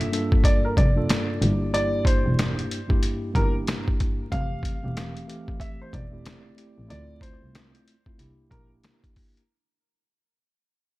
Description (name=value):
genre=hip hop, boom-bap hip-hop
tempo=93 BPM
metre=4/4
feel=swing 62% on 16ths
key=unclear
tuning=A4 = 440 Hz
part: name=warm upright piano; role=melody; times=0.0-8.7 s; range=Bb4 to F5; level=-30 LUFS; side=equal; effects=high-pass filter, low-pass filter, tape echo
part: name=mellow tine electric piano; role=accompaniment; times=0.0-9.4 s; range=G2 to A4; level=-30 LUFS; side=equal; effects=medium stereo tremolo, high-pass filter, low-pass filter
part: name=trip hop sampler-style drum kit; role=drums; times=0.0-9.5 s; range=hi-hat, kick drum, snare drum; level=-24 LUFS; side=equal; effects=none
part: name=dark double bass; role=bass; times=0.8-8.8 s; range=E1 to D2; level=-26 LUFS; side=equal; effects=none
room=little or no reverb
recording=vinyl crackle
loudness=-21 LUFS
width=side -19 dB against mid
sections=0.0-9.5 A section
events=fade-out 0.0-9.5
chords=0.0 Gm9; 1.4 C9; 4.3 Fmaj9; 6.9 Dm7; 8.2 C9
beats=0.45 1.09 | 1.74 2.38 3.03 3.67 | 4.32 4.96 5.61 6.25 | 6.90 7.54 8.19 8.83